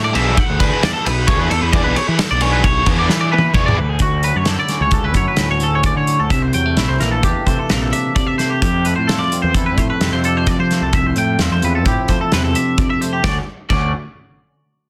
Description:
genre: math rock and midwest emo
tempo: 130 BPM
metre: 5/4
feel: straight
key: unclear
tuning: A4 = 440 Hz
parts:
  - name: twangy electric guitar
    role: arpeggios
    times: 0.0-13.9 s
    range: F#4 to G5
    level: -22 LUFS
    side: equal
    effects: analog chorus
  - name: fuzz picked electric bass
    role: bass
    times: 0.0-13.9 s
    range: Bb1 to F3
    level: -22 LUFS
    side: equal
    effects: overdrive
  - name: biting overdriven guitar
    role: riff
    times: 0.1-3.8 s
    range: E3 to G#4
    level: -23 LUFS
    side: equal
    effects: none
  - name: loose indie drum kit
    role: drums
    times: 0.2-13.8 s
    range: crash cymbal, hi-hat, kick drum, ride cymbal, snare drum, toms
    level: -21 LUFS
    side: equal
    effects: none
  - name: clean electric guitar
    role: accompaniment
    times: 4.0-13.9 s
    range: D2 to G#4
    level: -23 LUFS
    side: equal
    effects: none
room: light reverb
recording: dense, heavily limited modern master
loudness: -16 LUFS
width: mono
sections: 0.0-4.0 A section; 4.0-13.2 B section; 13.2-14.9 C section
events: drum fill 3.1-4.0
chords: 0.0 E7(no3); 4.0 Dmaj7; 6.3 C13; 8.6 Fmaj9; 13.2 Dmaj7

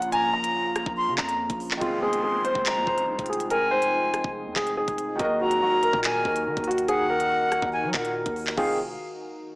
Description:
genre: hip hop, drill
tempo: 142 BPM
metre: 4/4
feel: half-time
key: F phrygian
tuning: A4 = 439 Hz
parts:
  - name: dark concert grand piano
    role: melody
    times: 0.0-8.8 s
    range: F4 to Bb5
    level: -26 LUFS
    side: equal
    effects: tape echo
  - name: felt-muted upright piano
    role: accompaniment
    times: 0.0-8.8 s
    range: Db3 to Bb4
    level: -34 LUFS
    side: right 1 dB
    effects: none
  - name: deep dark ambient pad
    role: sustained chords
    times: 0.0-8.8 s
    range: Eb3 to Bb4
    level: -34 LUFS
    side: equal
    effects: chorus, built-in reverb
  - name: hard-hitting 808-style bass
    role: bass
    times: 0.0-9.0 s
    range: F1 to Gb3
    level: -37 LUFS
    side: equal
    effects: none
  - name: drill drum kit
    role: drums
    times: 0.0-8.7 s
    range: crash cymbal, handclaps, hi-hat, kick drum, rim click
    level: -30 LUFS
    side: equal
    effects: none
  - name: breathy silver concert flute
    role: second line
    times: 0.1-8.8 s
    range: F5 to C6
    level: -27 LUFS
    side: left 1 dB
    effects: tape echo
  - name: downlifter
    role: sound effects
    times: 1.9-5.2 s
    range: none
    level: -40 LUFS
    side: equal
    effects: none
room: moderate recital hall reverb, RT60 1.3 s, digital ambience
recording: small speaker sound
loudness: -22 LUFS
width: side -24 dB against mid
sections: 0.0-1.8 A section; 1.8-8.6 B section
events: none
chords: 0.0 Bbm; 1.8 Fm7; 5.2 Ebm; 8.6 Fm7

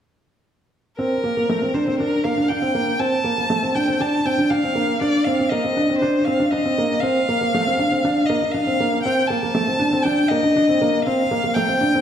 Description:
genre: electronica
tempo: 119 BPM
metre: 4/4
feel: straight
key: unclear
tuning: A4 = 440 Hz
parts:
  - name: rich violin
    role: melody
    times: 1.0-12.0 s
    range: Bb4 to A5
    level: -22 LUFS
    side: left 2 dB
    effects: none
  - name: felt-muted upright piano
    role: riff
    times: 1.0-12.0 s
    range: A3 to D4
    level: -19 LUFS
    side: right 1 dB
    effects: none
room: wet recital hall reverb, RT60 1.7 s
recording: none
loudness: -17 LUFS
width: side -9 dB against mid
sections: 1.0-12.0 A section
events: none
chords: 1.0 F/A (rootless); 5.0 Cm; 7.0 Cm9

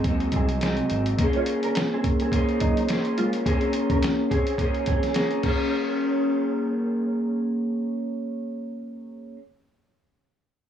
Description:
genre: indie pop, bedroom pop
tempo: 106 BPM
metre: 4/4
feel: swing 55% on 16ths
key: Bb minor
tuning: A4 = 440 Hz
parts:
  - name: mellow electric guitar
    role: second line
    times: 0.0-7.4 s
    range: Gb3 to Db5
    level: -30 LUFS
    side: right 2 dB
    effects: ensemble chorus, slapback echo, plate reverb
  - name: electric guitar through a small old amp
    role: accompaniment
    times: 0.0-9.4 s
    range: Ab2 to C5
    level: -24 LUFS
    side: equal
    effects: lush chorus, warbly pitch drift
  - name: fingered electric bass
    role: bass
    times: 0.0-1.1 s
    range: Ab1 to Eb2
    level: -27 LUFS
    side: equal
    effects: none
  - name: lo-fi sampler-style drum kit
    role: drums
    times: 0.0-5.6 s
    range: crash cymbal, hi-hat, kick drum, snare drum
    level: -26 LUFS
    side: equal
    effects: none
room: moderate small room reverb, RT60 0.5 s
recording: none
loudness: -22 LUFS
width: side -9 dB against mid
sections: 0.0-5.7 A section; 5.7-8.0 B section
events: none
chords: 0.0 Ab7; 1.2 Bbm9

